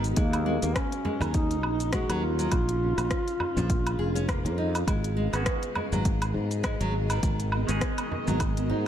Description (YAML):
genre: organic downtempo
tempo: 102 BPM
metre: 4/4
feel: swing 57% on 16ths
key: G# dorian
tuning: A4 = 441 Hz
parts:
  - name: granular cloud pad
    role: sustained chords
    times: 0.0-8.9 s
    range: B3 to E#5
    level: -35 LUFS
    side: right 1 dB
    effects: built-in reverb, sidechain pumping
  - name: nylon-string guitar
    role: arpeggios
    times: 0.0-8.9 s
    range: D#3 to G#4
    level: -34 LUFS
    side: equal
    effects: ping-pong delay
  - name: sustaining fretless electric bass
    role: bass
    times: 0.0-8.9 s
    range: E#1 to G#2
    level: -28 LUFS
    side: equal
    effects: wide subtle chorus
  - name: organic electronic drum kit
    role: drums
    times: 0.0-8.7 s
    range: hi-hat, rim click, shaker, woodblock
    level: -34 LUFS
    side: equal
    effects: overdrive
  - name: mellow duduk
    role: melody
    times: 0.2-4.5 s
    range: A#3 to F#4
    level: -31 LUFS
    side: equal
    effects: digital delay
  - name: electronic kick drum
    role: drums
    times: 0.2-8.5 s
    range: none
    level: -29 LUFS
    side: equal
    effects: overdrive
  - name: frame drum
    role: percussion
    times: 1.1-8.4 s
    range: none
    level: -36 LUFS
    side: right 1 dB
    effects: none
  - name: clean electric guitar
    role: accompaniment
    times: 5.3-8.9 s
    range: D#3 to G#4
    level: -37 LUFS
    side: right 1 dB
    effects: sidechain pumping, ping-pong delay
room: light reverb, digital ambience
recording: dark, warm production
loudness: -25 LUFS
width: side -10 dB against mid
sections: 0.0-8.9 A section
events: none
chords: 0.2 D#m7; 2.5 A#m7; 4.9 G#m9